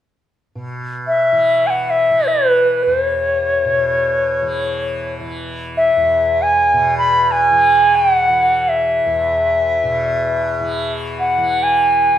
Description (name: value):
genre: indian classical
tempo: free time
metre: none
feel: none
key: E raga bhupali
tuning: A4 = 439 Hz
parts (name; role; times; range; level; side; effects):
- tanpura; drone; 0.6-12.2 s; E2 to E3; -25 LUFS; equal; none
- reedy bansuri; melody; 1.1-12.2 s; B4 to B5; -14 LUFS; equal; none
room: moderate recital hall reverb, RT60 1.4 s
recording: minimal, uncompressed stereo recording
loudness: -13 LUFS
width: side -10 dB against mid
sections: 0.5-12.2 A section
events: none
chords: none